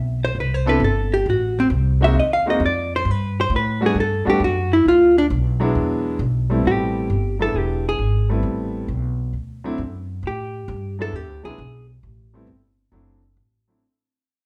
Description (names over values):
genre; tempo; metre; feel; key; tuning
jazz; 134 BPM; 4/4; swing 68% on 8ths; unclear; A4 = 438 Hz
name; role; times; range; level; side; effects
hollow-body jazz guitar; melody; 0.0-11.9 s; C4 to F5; -22 LUFS; equal; none
upright bass; bass; 0.0-13.8 s; E1 to A2; -25 LUFS; equal; none
clear concert grand piano; accompaniment; 0.7-13.8 s; F#3 to A4; -26 LUFS; equal; none
room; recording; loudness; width
moderate large studio reverb, RT60 0.9 s; band playing live in one room; -20 LUFS; mono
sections
0.0-6.6 A section; 6.6-13.8 B section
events
fade-out 6.6-13.8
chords
0.0 Cmaj7(no3); 1.3 Am; 2.2 Ab9; 3.1 Gmaj9; 4.8 Bm; 5.7 E7; 6.6 Am9; 7.5 E9; 8.4 Am9; 9.3 D9; 10.2 Asus2; 11.1 E9; 12.0 Am9; 12.9 D9